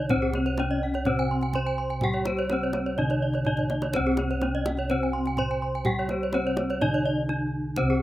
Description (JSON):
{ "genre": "Balinese gamelan", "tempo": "125 BPM", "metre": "4/4", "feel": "straight", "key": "C pelog", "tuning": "A4 = 440 Hz", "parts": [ { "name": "gamelan-type bronze metallophone", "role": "melody", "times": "0.0-8.0 s", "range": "C4 to C5", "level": "-28 LUFS", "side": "equal", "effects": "none" }, { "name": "gamelan-type bronze metallophone", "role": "accompaniment", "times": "0.0-8.0 s", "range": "C3 to G3-45c", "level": "-34 LUFS", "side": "right 1 dB", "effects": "none" }, { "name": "gamelan-type bronze metallophone", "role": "arpeggios", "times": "0.0-8.0 s", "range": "Ab4-40c to Ab5-40c", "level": "-32 LUFS", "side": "right 4 dB", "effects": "slapback echo" }, { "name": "gamelan-type bossed gongs", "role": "bass", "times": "0.0-8.0 s", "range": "C2 to G4-45c", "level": "-30 LUFS", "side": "equal", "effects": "none" }, { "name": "gamelan-type bronze metallophone", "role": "arpeggios", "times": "0.1-7.9 s", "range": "C5 to C6", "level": "-31 LUFS", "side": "left 3 dB", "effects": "slapback echo" }, { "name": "kendang", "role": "percussion", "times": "0.1-7.9 s", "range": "none", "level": "-33 LUFS", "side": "equal", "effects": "none" } ], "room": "little or no reverb", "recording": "recorded outdoors, with no room sound", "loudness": "-24 LUFS", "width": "side -15 dB against mid", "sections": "0.0-8.0 A section", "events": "drum fill 3.6-3.9; break 7.1-7.8", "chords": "none" }